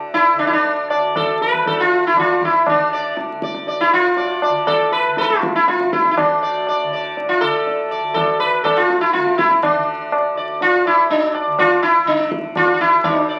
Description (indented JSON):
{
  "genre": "indian classical, Hindustani",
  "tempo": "121 BPM",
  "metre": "7/4",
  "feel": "straight",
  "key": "D raga shivaranjani",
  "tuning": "A4 = 442 Hz",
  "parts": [
    { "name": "tanpura", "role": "drone", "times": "0.0-13.4 s", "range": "D2 to D3", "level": "-32 LUFS", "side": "equal", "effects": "none" },
    { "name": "sitar", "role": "melody", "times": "0.1-13.4 s", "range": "D4 to D5", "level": "-18 LUFS", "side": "equal", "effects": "none" },
    { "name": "tabla", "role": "percussion", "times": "0.1-13.2 s", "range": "none", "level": "-23 LUFS", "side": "equal", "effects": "none" }
  ],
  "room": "wet club reverb, RT60 0.5 s",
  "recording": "very old 78 rpm record, vinyl crackle",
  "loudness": "-17 LUFS",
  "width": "mono",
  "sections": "0.0-13.0 A section",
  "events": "speeding up 0.0-13.4",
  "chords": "none",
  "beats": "0.13 0.64 1.15 1.66 2.16 | 2.67 3.17 3.67 4.17 4.68 5.18 5.68 | 6.17 6.67 7.17 7.66 8.16 8.65 9.14 | 9.63 10.12 10.61 11.10 11.59 12.08 12.56 | 13.05"
}